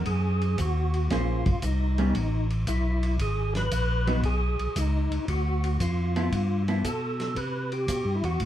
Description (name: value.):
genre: soul jazz organ trio.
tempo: 115 BPM.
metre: 4/4.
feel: swing 68% on 8ths.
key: unclear.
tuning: A4 = 440 Hz.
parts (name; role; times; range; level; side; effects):
percussive tonewheel organ; melody; 0.0-8.5 s; Eb4 to Cb5; -31 LUFS; equal; overdrive, chorus vibrato, slow rotary speaker.
vintage hollow-body jazz guitar; accompaniment; 0.0-6.8 s; F3 to C5; -29 LUFS; right 1 dB; none.
tonewheel organ; bass; 0.0-8.5 s; Ab1 to C3; -26 LUFS; equal; overdrive, chorus vibrato, stopped rotary speaker.
warm soul drum kit; drums; 0.1-8.5 s; hi-hat, kick drum, ride cymbal, snare drum; -34 LUFS; equal; none.
room: wet studio reverb, RT60 0.6 s.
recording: heard from further back in the room.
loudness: -24 LUFS.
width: side -12 dB against mid.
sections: 0.0-8.5 A section.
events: none.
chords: 0.0 Ebm; 1.1 Bbm9; 2.1 Asus2; 3.2 Abm; 5.3 Dmadd9; 6.3 G13; 7.4 Cmaj7.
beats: 0.06 0.58 | 1.11 1.63 2.15 2.67 | 3.19 3.71 4.24 4.76 | 5.28 5.80 6.32 6.84 | 7.36 7.88 8.40.